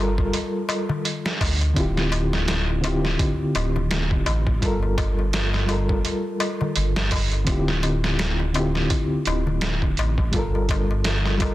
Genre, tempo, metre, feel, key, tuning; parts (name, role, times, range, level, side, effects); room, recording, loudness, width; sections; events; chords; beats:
trip hop; 84 BPM; 4/4; swing 57% on 16ths; D minor; A4 = 440 Hz
reed electric piano; accompaniment; 0.0-11.5 s; D3 to Bb4; -26 LUFS; equal; tremolo, vintage 12-bit sampler grit, tape echo
dark detuned saw bass; bass; 0.0-11.5 s; D1 to D2; -24 LUFS; equal
trip hop sampler-style drum kit; drums; 0.2-11.5 s; hi-hat, kick drum, snare drum; -25 LUFS; equal; vintage 12-bit sampler grit
darbuka; percussion; 0.2-11.5 s; -31 LUFS; left 4 dB
light reverb; dense, heavily limited modern master; -20 LUFS; side -16 dB against mid
0.0-11.5 A section
0.0 Gm9; 1.8 Dm11; 4.6 Gm9; 7.5 Dm11; 10.3 Gm9
0.34 1.05 | 1.76 2.48 3.19 3.91 | 4.62 5.34 6.05 6.76 | 7.48 8.19 8.91 9.62 | 10.34 11.05